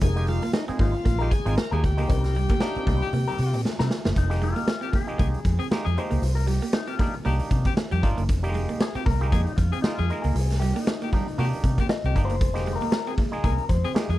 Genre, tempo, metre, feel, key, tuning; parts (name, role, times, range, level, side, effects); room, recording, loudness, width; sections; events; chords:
funk; 116 BPM; 4/4; swing 56% on 16ths; F dorian; A4 = 435 Hz
bright tonewheel organ; melody; 0.0-3.6 s; Eb4 to Bb4; -30 LUFS; left 3 dB; overdrive, slow rotary speaker
mellow electric guitar; accompaniment; 0.0-14.2 s; G3 to Eb5; -33 LUFS; left 7 dB; wah
vintage muted fingered electric bass; bass; 0.0-14.2 s; F1 to C3; -24 LUFS; equal
raw garage drum kit; drums; 0.0-14.2 s; hi-hat, kick drum, snare drum; -26 LUFS; equal
clean electric guitar; riff; 0.2-14.2 s; G3 to C4; -32 LUFS; right 5 dB
auto-wah clav; stabs; 0.2-14.1 s; G3 to Bb4; -32 LUFS; right 2 dB
clear tenor saxophone; second line; 3.0-14.2 s; G4 to Ab4; -33 LUFS; left 12 dB
little or no reverb; -22 LUFS; side -15 dB against mid
0.0-4.2 A section; 4.2-14.2 B section
band accent 2.1-4.2; drum fill 3.6-4.2; clean electric guitar solo 4.2-14.2
0.0 Fm11; 2.1 Cm7; 4.2 Fm11; 6.2 Cm7; 8.3 Fm11; 10.4 Cm7; 12.4 Fm11